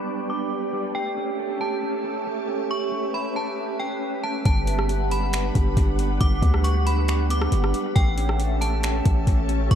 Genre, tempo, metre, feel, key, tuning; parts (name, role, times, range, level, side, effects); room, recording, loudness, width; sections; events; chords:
hip hop, atmospheric cloud-rap; 137 BPM; 4/4; half-time; G lydian; A4 = 442 Hz
metallic FM bell; melody; 0.0-9.8 s; G5 to D6; -30 LUFS; equal; chorus, low-pass filter, dub echo
glassy FM pad; sustained chords; 0.0-9.8 s; C#4 to F#5; -28 LUFS; right 2 dB; ensemble chorus, built-in reverb, phaser, sidechain pumping, low-pass filter
mellow electric guitar; arpeggios; 0.0-9.8 s; G3 to A4; -32 LUFS; right 1 dB; tremolo, low-pass filter, dub echo
wind-like tuned noise texture; texture; 0.0-9.8 s; B3 to G5; -37 LUFS; right 2 dB; built-in reverb
warm 808-style bass; bass; 4.5-9.8 s; G1 to D2; -22 LUFS; equal
smooth R&B drum kit; drums; 4.5-9.8 s; finger snaps, hi-hat, kick drum, rim click; -23 LUFS; equal
little or no reverb; echo-heavy mix; -21 LUFS; side -9 dB against mid
0.0-4.5 A section; 4.5-9.8 B section
filter sweep 0.0-4.5
0.0 G; 1.0 A7; 4.5 Gmaj7; 8.0 A7